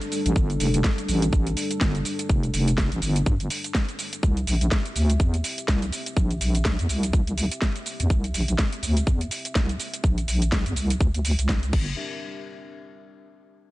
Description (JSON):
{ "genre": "bass house", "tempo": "124 BPM", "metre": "4/4", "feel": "swing 57% on 16ths", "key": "unclear", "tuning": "A4 = 441 Hz", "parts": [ { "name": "dark analog pad", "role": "sustained chords", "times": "0.0-12.0 s", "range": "G3 to E5", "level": "-34 LUFS", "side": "left 1 dB", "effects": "chorus, sidechain pumping" }, { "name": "garage drum kit", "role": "drums", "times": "0.0-11.8 s", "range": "crash cymbal, hi-hat, shaker, snare drum", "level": "-29 LUFS", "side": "equal", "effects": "none" }, { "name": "wobble bass", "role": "bass", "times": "0.3-12.0 s", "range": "F1 to G2", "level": "-23 LUFS", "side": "equal", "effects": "chorus, tube saturation, sidechain pumping" }, { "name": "electronic kick drum", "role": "drums", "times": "0.4-11.8 s", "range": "none", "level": "-22 LUFS", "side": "equal", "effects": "none" } ], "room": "little or no reverb", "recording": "nothing above 10.3 kHz", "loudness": "-21 LUFS", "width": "side -18 dB against mid", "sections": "0.0-12.0 A section; 12.0-13.7 B section", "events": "filter sweep on wobble bass 0.0-12.0", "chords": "0.0 Gsus2; 4.2 C; 11.7 Gm; 12.0 N.C." }